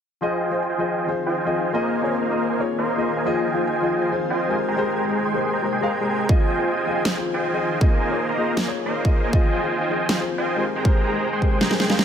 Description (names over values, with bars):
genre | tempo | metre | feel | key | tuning
future bass | 158 BPM | 4/4 | half-time | F minor | A4 = 440 Hz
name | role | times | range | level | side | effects
dark grand piano | accompaniment | 0.2-12.0 s | F3 to F5 | -25 LUFS | left 4 dB | sidechain pumping, tape echo
shimmering ambient pad | sustained chords | 0.7-12.0 s | C3 to Ab4 | -30 LUFS | equal | chorus, built-in reverb, sidechain pumping
supersaw chords | riff | 0.2-12.0 s | Ab3 to C6 | -23 LUFS | right 2 dB | sidechain pumping, low-pass filter, tape echo
electronic kick drum | drums | 6.3-11.5 s | none | -18 LUFS | equal | none
electronic snare drum | drums | 7.1-12.0 s | none | -23 LUFS | right 1 dB | none
room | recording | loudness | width
light reverb | none | -19 LUFS | side -8 dB against mid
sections
0.2-12.0 A section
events
drum fill 11.6-12.0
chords
0.2 Fm7; 1.7 Bb7sus4; 3.3 Fm7; 4.6 Abmaj9; 6.3 Fm7; 7.8 Bb7sus4; 9.3 Fm7; 10.7 Abmaj9